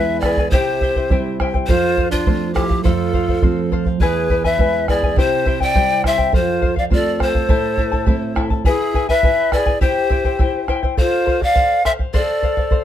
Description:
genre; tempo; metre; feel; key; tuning
andean folk, Andean ensemble; 103 BPM; 2/4; straight; unclear; A4 = 441 Hz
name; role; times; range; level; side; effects
breathy bright pan flute; melody; 0.0-12.8 s; F4 to G5; -19 LUFS; left 2 dB; none
large quena; second line; 0.0-12.8 s; D4 to D5; -24 LUFS; right 1 dB; none
charango; accompaniment; 0.0-12.8 s; E4 to A5; -23 LUFS; left 6 dB; none
nylon-string guitar; accompaniment; 0.0-8.6 s; E2 to F4; -23 LUFS; right 6 dB; none
bombo; percussion; 0.2-12.8 s; none; -18 LUFS; equal; none
room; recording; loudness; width
light reverb; close, detailed microphones; -15 LUFS; side -11 dB against mid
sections
0.0-8.7 A section; 8.7-12.8 A section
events
none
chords
0.0 E; 0.5 C; 1.7 F; 4.0 E; 5.2 C; 6.3 F; 7.5 Am; 8.7 E; 9.8 C; 11.0 F

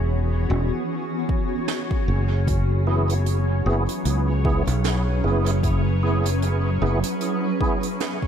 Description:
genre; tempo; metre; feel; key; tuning
ambient dub; 76 BPM; 4/4; swing 57% on 16ths; unclear; A4 = 439 Hz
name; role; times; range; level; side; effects
granular cloud pad; sustained chords; 0.0-8.3 s; E3 to B4; -27 LUFS; equal; built-in reverb
fingered electric bass; bass; 0.0-7.0 s; E1 to C#2; -21 LUFS; equal; none
bubbling stepped-filter texture; texture; 0.0-8.3 s; C#4 to C#5; -32 LUFS; equal; chorus, built-in reverb
electronic kick drum; drums; 1.3-8.3 s; none; -24 LUFS; equal; none
vintage brush drum kit; drums; 1.7-8.2 s; hi-hat, snare drum; -32 LUFS; right 8 dB; dub echo
tonewheel organ; stabs; 2.9-7.8 s; B3 to G#4; -27 LUFS; right 3 dB; overdrive, chorus vibrato, slow rotary speaker, dub echo
room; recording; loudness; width
light reverb, studio ambience; echo-heavy mix; -20 LUFS; side -8 dB against mid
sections
0.0-8.3 A section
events
none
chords
0.0 F#9sus4

